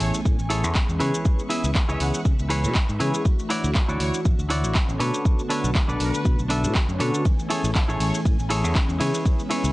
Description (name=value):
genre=filtered disco house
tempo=120 BPM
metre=4/4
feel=swing 55% on 16ths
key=A major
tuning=A4 = 437 Hz
part: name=clear trumpet section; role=melody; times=0.0-8.1 s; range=B4 to F#5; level=-36 LUFS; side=equal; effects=sidechain pumping, tape echo
part: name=mellow synth brass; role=accompaniment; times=0.0-9.7 s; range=D3 to G#5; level=-30 LUFS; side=equal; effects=chorus, phaser, sidechain pumping
part: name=string machine, full ensemble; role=sustained chords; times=0.0-9.7 s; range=D3 to C#6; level=-36 LUFS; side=equal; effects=none
part: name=semi-hollow electric guitar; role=riff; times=0.0-9.7 s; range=D4 to E5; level=-27 LUFS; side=equal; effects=vintage 12-bit sampler grit, sidechain pumping
part: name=fingered electric bass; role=bass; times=0.0-9.7 s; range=A1 to C#3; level=-25 LUFS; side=equal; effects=sidechain pumping
part: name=punchy analog drum machine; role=drums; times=0.0-9.7 s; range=handclaps, hi-hat, ride cymbal, shaker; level=-30 LUFS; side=equal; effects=sidechain pumping on hats, sidechain pumping on perc, sidechain pumping on cymbals
part: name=impact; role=sound effects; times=0.0-1.3 s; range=none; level=-41 LUFS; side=equal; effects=none
part: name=electronic kick drum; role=drums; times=0.3-9.4 s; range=none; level=-21 LUFS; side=equal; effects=none
room=digital ambience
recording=dry, gritty hardware recording, transformer saturation, cassette tape, nothing above 10.4 kHz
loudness=-20 LUFS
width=side -19 dB against mid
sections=0.0-9.7 A section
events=impact 0.0-1.3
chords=0.0 Amaj7; 1.0 C#m7; 3.3 Dmaj9; 5.0 Bm9; 7.3 Amaj7; 9.0 C#m7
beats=0.25 0.75 | 1.25 1.75 2.25 2.75 | 3.25 3.75 4.25 4.75 | 5.25 5.75 6.25 6.75 | 7.25 7.75 8.25 8.75 | 9.25